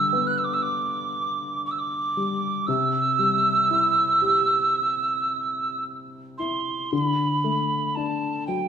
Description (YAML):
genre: celtic folk, Celtic slow air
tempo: 58 BPM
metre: 4/4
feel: rubato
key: unclear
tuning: A4 = 441 Hz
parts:
  - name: mellow hollow mid whistle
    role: melody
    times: 0.0-8.7 s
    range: G5 to F#6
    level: -22 LUFS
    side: right 3 dB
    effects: none
  - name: dark upright piano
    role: accompaniment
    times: 0.0-8.7 s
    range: G2 to G4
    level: -28 LUFS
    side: left 4 dB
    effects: none
room: moderate concert hall reverb, RT60 1.9 s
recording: minimal, uncompressed stereo recording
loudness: -21 LUFS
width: side -8 dB against mid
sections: 0.0-6.9 A section; 6.9-8.7 B section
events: none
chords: 0.0 G; 2.7 C; 6.9 D5